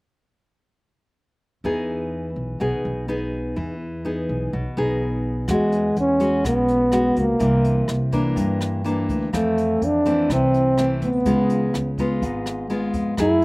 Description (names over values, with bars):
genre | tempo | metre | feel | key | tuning
bossa nova | 125 BPM | 4/4 | straight | unclear | A4 = 441 Hz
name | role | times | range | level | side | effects
nylon-string guitar | accompaniment | 1.6-13.4 s | F2 to G#4 | -24 LUFS | left 1 dB | slapback echo
upright bass | bass | 1.6-13.4 s | G#1 to G2 | -26 LUFS | equal | none
mellow trombone | melody | 5.5-13.4 s | G#3 to E4 | -19 LUFS | equal | none
jazz brush drum kit | drums | 5.5-13.4 s | hi-hat, kick drum, rim click | -32 LUFS | equal | none
room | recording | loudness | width
little or no reverb | recorded outdoors, with no room sound | -19 LUFS | side -25 dB against mid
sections
1.6-5.5 A section; 5.5-13.4 B section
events
none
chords
1.6 Emaj7; 5.5 E69; 7.4 C9; 9.3 Fmaj7; 11.3 C#7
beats
| 1.64 2.12 2.60 3.08 | 3.56 4.04 4.52 5.00 | 5.49 5.97 6.45 6.93 | 7.41 7.89 8.37 8.85 | 9.33 9.81 10.29 10.77 | 11.25 11.73 12.21 12.70 | 13.18